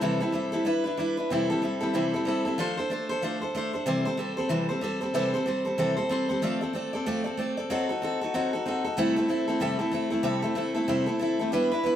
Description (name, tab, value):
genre	rock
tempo	188 BPM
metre	4/4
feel	swing 60% on 8ths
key	C major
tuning	A4 = 440 Hz
part	picked steel-string acoustic guitar	solo	0.0-12.0 s	C3 to D5	-25 LUFS	equal	none
room	wet large studio reverb, RT60 1.3 s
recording	band playing live in one room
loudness	-25 LUFS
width	side -10 dB against mid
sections	0.0-1.3 A section; 1.3-12.0 B section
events	none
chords	0.0 C6; 0.7 G6; 1.3 C6; 2.6 F6; 3.9 C6; 6.4 F6; 7.7 F#dim7; 9.0 C6